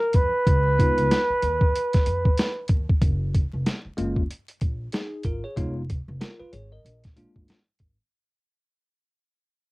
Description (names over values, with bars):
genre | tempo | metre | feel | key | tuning
hip hop, jazz-hop | 94 BPM | 4/4 | swing 60% on 16ths | F# major | A4 = 439 Hz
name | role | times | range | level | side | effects
breathy flugelhorn | melody | 0.0-2.7 s | A#4 to B4 | -23 LUFS | right 1 dB | cassette tape
upright bass | bass | 0.1-7.9 s | E#1 to E#2 | -28 LUFS | equal | none
boom bap sampler-style drum kit | drums | 0.1-8.0 s | hi-hat, kick drum, snare drum | -22 LUFS | equal | cassette tape
bell-like tine electric piano | accompaniment | 0.8-7.6 s | G#3 to Eb5 | -30 LUFS | left 1 dB | fast stereo tremolo, cassette tape
room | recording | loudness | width
little or no reverb | home recording on cassette, vinyl crackle | -21 LUFS | side -21 dB against mid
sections
0.0-3.0 A section; 3.0-8.1 B section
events
fade-out 3.0-8.1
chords
0.5 C#9; 3.0 F#maj9; 5.6 Fm7b5; 6.8 A#7